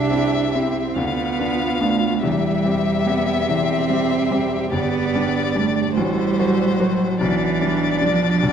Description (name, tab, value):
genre	classical, slow romantic movement for piano quartet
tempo	48 BPM (dotted quarters)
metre	6/8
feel	rubato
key	C major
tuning	A4 = 440 Hz
part	warm violin	melody	0.0-8.5 s	C5 to F5	-25 LUFS	left 6 dB	none
part	rich cello	second line	0.0-8.5 s	E3 to D4	-21 LUFS	right 6 dB	none
part	bright baby grand piano	accompaniment	0.0-8.5 s	E1 to D5	-22 LUFS	left 2 dB	none
part	dark viola	accompaniment	0.0-8.5 s	D4 to G4	-29 LUFS	right 2 dB	none
room	wet recital hall reverb, RT60 1.3 s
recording	dark, warm production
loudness	-17 LUFS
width	side -8 dB against mid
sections	0.0-8.5 A section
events	none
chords	0.0 C; 1.0 Bdim/D; 2.2 C/E; 4.7 G; 6.0 F#dim/A; 7.2 G/B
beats	0.99 | 2.25 3.50 | 4.74 5.98 | 7.21 8.43